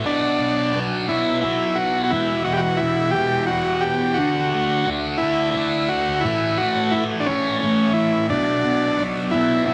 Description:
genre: rock.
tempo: 58 BPM (dotted quarters).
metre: 6/8.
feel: straight.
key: B minor.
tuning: A4 = 440 Hz.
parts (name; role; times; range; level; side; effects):
thick fuzz guitar; riff; 0.0-9.7 s; E2 to D4; -24 LUFS; equal; distortion, phaser, analog delay.
overdriven combo organ; melody; 0.1-9.7 s; C#4 to G4; -23 LUFS; equal; analog delay.
room: moderate plate reverb, RT60 2.4 s.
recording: echo-heavy mix.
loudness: -21 LUFS.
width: mono.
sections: 0.0-9.7 A section.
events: none.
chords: 0.1 Bm; 2.1 E5; 4.2 D; 6.2 A5; 8.3 Bm.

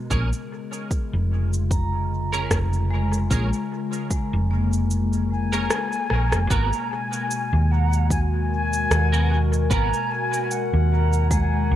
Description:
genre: ambient dub.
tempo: 75 BPM.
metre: 4/4.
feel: swing 55% on 16ths.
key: G# dorian.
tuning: A4 = 440 Hz.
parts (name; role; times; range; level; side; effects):
warbly tape-like pad; sustained chords; 0.0-11.8 s; B2 to A#4; -30 LUFS; left 2 dB; chorus, built-in reverb.
vibraphone with medium hard mallets; arpeggios; 0.0-11.8 s; G#3 to A#5; -31 LUFS; left 4 dB; tape echo.
twelve-string electric guitar; stabs; 0.1-9.9 s; B3 to A#4; -32 LUFS; right 3 dB; ensemble chorus, dub echo.
hollow-body short-scale fingered electric bass; bass; 0.1-11.8 s; E#1 to D#2; -21 LUFS; equal; none.
electronic kick drum; drums; 0.1-11.5 s; none; -24 LUFS; equal; none.
electronic shaker and rim click; drums; 0.1-11.5 s; none; -29 LUFS; equal; dub echo.
mellow concert flute; melody; 5.3-11.8 s; F#5 to A#5; -26 LUFS; left 1 dB; tape echo.
room: light reverb, digital ambience.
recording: none.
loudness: -20 LUFS.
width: side -12 dB against mid.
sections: 0.0-6.5 A section; 6.5-11.8 B section.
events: filter sweep on vibraphone 0.0-6.5; kick drops out 4.9-6.5; band accent 5.7-6.1; drum fill 6.1-6.5.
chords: 0.1 A#m7; 6.5 G#m9.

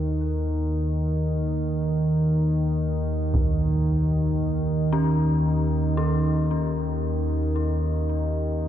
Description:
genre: dark ambient drone.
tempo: free time.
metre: none.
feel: none.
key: unclear.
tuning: A4 = 440 Hz.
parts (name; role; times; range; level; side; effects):
dark detuned synth bell; arpeggios; 0.0-8.7 s; Db4 to A4; -32 LUFS; left 6 dB; chorus, ping-pong delay.
analog drone; drone; 0.0-8.7 s; Eb2 to Eb3; -22 LUFS; equal; chorus.
taiko ensemble; percussion; 3.3-3.6 s; none; -29 LUFS; equal; none.
room: wet cathedral reverb, RT60 5.0 s.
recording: dark, warm production.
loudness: -21 LUFS.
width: side -10 dB against mid.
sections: 0.0-8.7 A section.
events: none.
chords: 0.0 N.C.; 3.4 Eb7(no3).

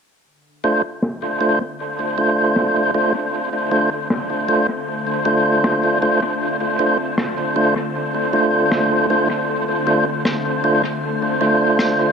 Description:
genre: ambient dub.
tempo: 78 BPM.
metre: 4/4.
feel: swing 59% on 16ths.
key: D minor.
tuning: A4 = 439 Hz.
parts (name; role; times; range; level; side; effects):
soft additive organ-like pad; sustained chords; 1.5-12.1 s; D3 to F4; -27 LUFS; left 2 dB; ensemble chorus, built-in reverb.
tonewheel organ; stabs; 0.6-12.1 s; A3 to C5; -17 LUFS; right 1 dB; fast rotary speaker, low-pass filter, dub echo.
rim click; drums; 1.0-12.0 s; none; -26 LUFS; left 1 dB; low-pass filter on snare, low-pass filter on room, dub echo.
room: moderate spring reverb, RT60 2.0 s.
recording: echo-heavy mix.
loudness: -16 LUFS.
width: side -6 dB against mid.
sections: 0.3-12.1 A section.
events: fade-in on ambient pad 0.3-12.1; filter sweep on drum 0.3-12.1.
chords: 0.3 Dm7.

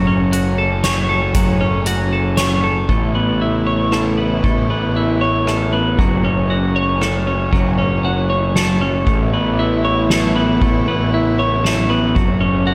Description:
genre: post-rock.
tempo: 117 BPM.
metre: 3/4.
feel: straight.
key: A major.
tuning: A4 = 438 Hz.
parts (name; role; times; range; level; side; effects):
rich studio string section; sustained chords; 0.0-12.7 s; C#3 to E4; -28 LUFS; equal; none.
twelve-string electric guitar; arpeggios; 0.0-12.7 s; F#3 to C#5; -20 LUFS; equal; slapback echo.
fuzz picked electric bass; bass; 0.0-12.7 s; F#1 to A1; -22 LUFS; equal; overdrive.
soft-mallet drum kit; drums; 0.3-12.7 s; hi-hat, kick drum, ride cymbal, rim click, snare drum; -24 LUFS; equal; none.
room: moderate recital hall reverb, RT60 1.5 s, studio ambience.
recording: none.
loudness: -17 LUFS.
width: mono.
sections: 0.0-2.9 A section; 2.9-12.7 B section.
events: none.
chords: 0.0 F#m; 2.9 Aadd9; 6.0 F#m; 9.1 Aadd9; 12.2 F#m.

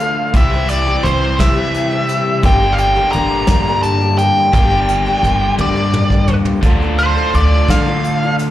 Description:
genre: folk rock and heartland rock.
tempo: 57 BPM (dotted quarters).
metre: 6/8.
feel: straight.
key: unclear.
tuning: A4 = 442 Hz.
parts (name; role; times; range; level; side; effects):
nasal lead guitar with a parked wah; melody; 0.0-8.4 s; C5 to Bb5; -16 LUFS; equal; overdrive, slapback echo.
picked twelve-string acoustic guitar; accompaniment; 0.0-8.5 s; G2 to A4; -23 LUFS; left 4 dB; slapback echo.
biting overdriven guitar; riff; 0.0-8.5 s; G2 to G4; -19 LUFS; left 1 dB; slapback echo.
upright bass; bass; 0.0-8.5 s; G1 to D3; -17 LUFS; equal; none.
soft brush drum kit; drums; 0.0-8.5 s; hi-hat, kick drum, snare drum, toms; -18 LUFS; equal; none.
room: light reverb, studio reverb.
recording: live gig heard through the venue's PA, club reverb.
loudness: -12 LUFS.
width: side -13 dB against mid.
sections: 0.0-8.5 A section.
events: drum fill 5.6-6.6.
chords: 0.3 C; 2.4 Gm; 6.6 Dm.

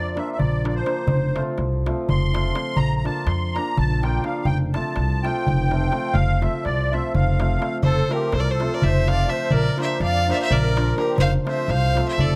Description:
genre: balkan folk, Balkan wedding band.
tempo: 249 BPM (eighths).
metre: 7/8.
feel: straight.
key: F major.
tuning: A4 = 441 Hz.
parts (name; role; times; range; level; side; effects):
musette accordion; second line; 0.0-12.4 s; G4 to C6; -29 LUFS; equal; none.
hammered dulcimer; accompaniment; 0.0-12.4 s; F3 to F4; -30 LUFS; equal; none.
upright bass; bass; 0.0-12.4 s; F1 to F2; -25 LUFS; equal; none.
darbuka; percussion; 0.0-12.3 s; none; -27 LUFS; equal; none.
clear fiddle; melody; 7.8-12.4 s; Bb4 to F5; -26 LUFS; equal; none.
room: studio reverb.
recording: dry, close 1970s-style studio recording.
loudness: -22 LUFS.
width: mono.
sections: 0.0-7.8 A section; 7.8-12.4 B section.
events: accordion solo 0.0-7.8.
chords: 0.0 Bb; 1.1 F; 2.8 Bb; 4.5 F; 9.5 Bb; 11.2 F.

